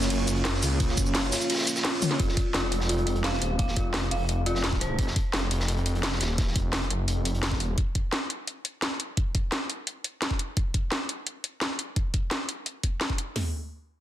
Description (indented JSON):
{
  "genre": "dark technical drum and bass",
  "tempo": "172 BPM",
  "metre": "4/4",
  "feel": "straight",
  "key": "F phrygian",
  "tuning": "A4 = 439 Hz",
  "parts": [
    { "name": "dark analog pad", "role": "sustained chords", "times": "0.0-5.0 s", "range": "Ab3 to Db5", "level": "-31 LUFS", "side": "right 1 dB", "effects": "chorus, sidechain pumping" },
    { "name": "snarling distorted saw bass", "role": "bass", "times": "0.0-7.8 s", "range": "Eb1 to Db2", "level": "-28 LUFS", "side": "equal", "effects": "distortion" },
    { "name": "crunchy breakbeat drum kit", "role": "drums", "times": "0.0-7.7 s", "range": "hi-hat, snare drum", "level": "-35 LUFS", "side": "equal", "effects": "high-pass filter on hats, high-pass filter on snare, high-pass filter on room" },
    { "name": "drum and bass drum kit", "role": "drums", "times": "0.0-13.3 s", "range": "hi-hat, ride cymbal, shaker, snare drum, toms", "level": "-29 LUFS", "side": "equal", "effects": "none" },
    { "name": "drum and bass drum kit", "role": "drums", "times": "0.8-13.4 s", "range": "hi-hat, kick drum, snare drum, toms", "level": "-27 LUFS", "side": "equal", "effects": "none" },
    { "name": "dark detuned synth bell", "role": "arpeggios", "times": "2.2-4.9 s", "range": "F4 to F5", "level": "-32 LUFS", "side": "equal", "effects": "chorus, sidechain pumping, ping-pong delay" }
  ],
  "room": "light reverb, digital ambience",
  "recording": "dense, heavily limited modern master",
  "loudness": "-25 LUFS",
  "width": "side -12 dB against mid",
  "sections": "0.0-2.2 A section; 2.2-13.4 B section",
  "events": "drop 0.0-2.2; drum fill 2.0; filter sweep on analog synth pad 2.2-5.0",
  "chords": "0.0 Gb; 2.2 Fm; 7.8 N.C."
}